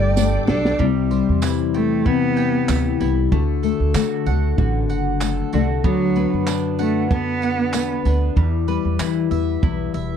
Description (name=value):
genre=acoustic pop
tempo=95 BPM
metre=4/4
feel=swing 55% on 16ths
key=unclear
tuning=A4 = 439 Hz
part: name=rich cello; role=melody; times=0.0-8.0 s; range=D3 to D5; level=-22 LUFS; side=right 4 dB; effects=none
part: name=fingerpicked steel-string acoustic guitar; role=accompaniment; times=0.0-10.2 s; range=E2 to G4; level=-22 LUFS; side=left 15 dB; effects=none
part: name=bright tonewheel organ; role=sustained chords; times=0.0-0.8 s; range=A4 to D6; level=-31 LUFS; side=right 2 dB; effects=chorus vibrato, slow rotary speaker
part: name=mandolin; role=arpeggios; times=0.0-10.2 s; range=G3 to G5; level=-30 LUFS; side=right 10 dB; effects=none
part: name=upright bass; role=bass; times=0.0-10.2 s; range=E1 to E3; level=-22 LUFS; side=right 2 dB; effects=none
part: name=compact cocktail drum kit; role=drums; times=0.2-10.1 s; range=handclaps, kick drum, snare drum, tambourine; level=-22 LUFS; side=right 1 dB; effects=none
part: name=tambourine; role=percussion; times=0.2-9.2 s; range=none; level=-33 LUFS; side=right 29 dB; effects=none
room=little or no reverb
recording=dry, close 1970s-style studio recording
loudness=-17 LUFS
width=side -8 dB against mid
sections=0.8-10.2 A section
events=drum fill 0.2-0.8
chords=0.0 Gsus2; 0.8 C; 3.3 D; 5.8 Bm/D; 8.4 Em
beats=0.17 | 0.80 1.43 2.06 2.69 | 3.32 3.95 4.58 5.21 | 5.84 6.47 7.10 7.74 | 8.37 9.00 9.63